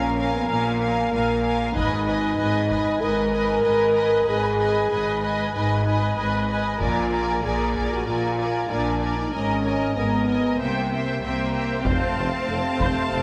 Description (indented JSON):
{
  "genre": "cinematic, epic orchestral film score",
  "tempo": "95 BPM",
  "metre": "4/4",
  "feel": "straight",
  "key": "G# dorian",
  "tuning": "A4 = 441 Hz",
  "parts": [
    { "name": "warm symphonic violin section", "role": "melody", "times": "0.0-13.2 s", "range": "Bb4 to G#5", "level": "-34 LUFS", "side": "equal", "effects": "none" },
    { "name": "warm studio violin section", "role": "second line", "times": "0.0-13.2 s", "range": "D5 to A5", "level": "-32 LUFS", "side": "equal", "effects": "none" },
    { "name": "warm symphonic viola section", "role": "accompaniment", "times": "0.0-13.2 s", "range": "A4 to C5", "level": "-31 LUFS", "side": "equal", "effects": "none" },
    { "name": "warm French horn section", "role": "sustained chords", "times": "0.0-13.2 s", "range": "A#3 to C5", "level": "-27 LUFS", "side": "equal", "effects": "none" },
    { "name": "rich symphonic cello section", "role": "bass", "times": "0.0-13.2 s", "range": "G#2 to C4", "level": "-31 LUFS", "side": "equal", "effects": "none" },
    { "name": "rich symphonic double bass section", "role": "bass", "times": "0.0-13.2 s", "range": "F1 to C2", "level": "-32 LUFS", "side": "equal", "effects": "none" },
    { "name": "taiko ensemble", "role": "drums", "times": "1.8-3.0, 6.8-8.0, 11.9-13.2 s", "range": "none", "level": "-32 LUFS", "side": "equal", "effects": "none" },
    { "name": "clear trombone section", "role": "sustained chords", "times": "11.9-13.2 s", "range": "C3 to A3", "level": "-34 LUFS", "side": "equal", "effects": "none" },
    { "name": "mellow tuba", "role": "bass", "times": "11.9-13.2 s", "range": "F1", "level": "-34 LUFS", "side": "equal", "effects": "none" },
    { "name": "timpani", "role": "percussion", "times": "11.9-12.8 s", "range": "F2", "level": "-35 LUFS", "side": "equal", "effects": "none" }
  ],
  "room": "wet scoring stage reverb, RT60 1.9 s",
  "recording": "none",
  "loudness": "-23 LUFS",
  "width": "mono",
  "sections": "0.0-11.9 A section; 11.9-13.2 B section",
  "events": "none",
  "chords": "0.0 A#m7; 1.8 G#m; 6.8 A#7; 9.3 G#madd9; 10.6 C7; 11.9 F"
}